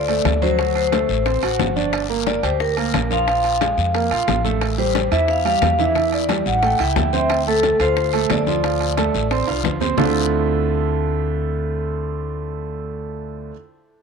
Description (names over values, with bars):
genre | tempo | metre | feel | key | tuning
Afro-Cuban jazz | 179 BPM | 4/4 | straight | D minor | A4 = 439 Hz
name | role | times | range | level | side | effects
warm grand piano | accompaniment | 0.0-13.5 s | D3 to G5 | -23 LUFS | right 11 dB | none
upright bass | bass | 0.0-13.5 s | G1 to F2 | -24 LUFS | left 1 dB | none
vibraphone with medium mallets | melody | 0.1-13.5 s | A4 to G5 | -21 LUFS | left 3 dB | none
bongos | percussion | 0.1-10.1 s | none | -28 LUFS | left 13 dB | none
congas | percussion | 0.1-10.1 s | none | -30 LUFS | left 13 dB | none
timbales | percussion | 0.1-10.1 s | none | -29 LUFS | right 11 dB | none
guiro | percussion | 0.3-10.1 s | none | -31 LUFS | left 14 dB | none
room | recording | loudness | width
wet spring reverb, RT60 2.5 s | 1960s-style stereo with parts hard left and right | -17 LUFS | side -6 dB against mid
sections
0.0-10.0 A section; 10.0-12.7 B section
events
drum fill 9.5-10.0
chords
0.0 D5; 0.6 D7; 1.9 Gm7; 3.3 Bb5; 4.6 A7(no3); 6.6 A7; 7.3 Dm7; 10.0 Dm9